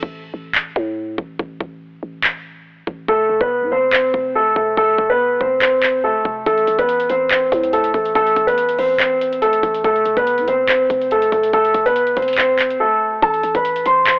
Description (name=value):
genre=hip hop, trap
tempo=142 BPM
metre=4/4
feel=half-time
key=unclear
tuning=A4 = 436 Hz
part: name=growling 808-style bass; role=bass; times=0.0-14.2 s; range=F1 to A2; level=-33 LUFS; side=equal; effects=none
part: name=trap drum kit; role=drums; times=0.0-14.2 s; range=handclaps, hi-hat, kick drum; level=-23 LUFS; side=equal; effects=cassette tape
part: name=dark concert grand piano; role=melody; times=3.1-14.2 s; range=A3 to C6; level=-17 LUFS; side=equal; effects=cassette tape
room=light reverb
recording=home recording on cassette, telephone sound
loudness=-17 LUFS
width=mono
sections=0.0-13.2 A section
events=break 0.0-6.5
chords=0.0 N.C.; 3.1 F5; 6.5 Am; 9.8 F5; 13.2 Am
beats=0.13 0.55 0.97 | 1.39 1.82 2.24 2.66 | 3.08 3.51 3.93 4.35 | 4.77 5.20 5.62 6.04 | 6.46 6.89 7.31 7.73 | 8.15 8.58 9.00 9.42 | 9.84 10.27 10.69 11.11 | 11.53 11.96 12.38 12.80 | 13.22 13.65 14.07